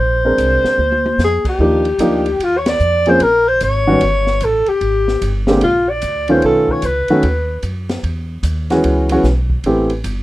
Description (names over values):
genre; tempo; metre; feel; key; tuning
jazz, small-group swing and bop; 149 BPM; 4/4; swing 64% on 8ths; unclear; A4 = 440 Hz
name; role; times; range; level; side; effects
breathy alto saxophone; melody; 0.0-7.6 s; F4 to D5; -15 LUFS; left 1 dB; none
upright bass; bass; 0.0-10.2 s; G1 to F#2; -19 LUFS; equal; none
warm upright piano; accompaniment; 0.2-9.9 s; D3 to A#4; -14 LUFS; equal; none
open jazz drum kit; drums; 0.4-10.2 s; crash cymbal, hi-hat, kick drum, ride cymbal, snare drum, toms; -26 LUFS; equal; none
room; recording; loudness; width
little or no reverb; rough home demo mix; -13 LUFS; side -16 dB against mid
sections
0.0-1.6 A section; 1.6-10.2 B section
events
drum fill 0.8-1.2; band accent 2.6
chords
0.0 A#9; 1.6 Ebmaj9; 3.2 Bbm7; 4.0 A7/G; 4.8 Abmaj7(b5, no3); 6.4 B9; 8.0 E69; 9.6 Am9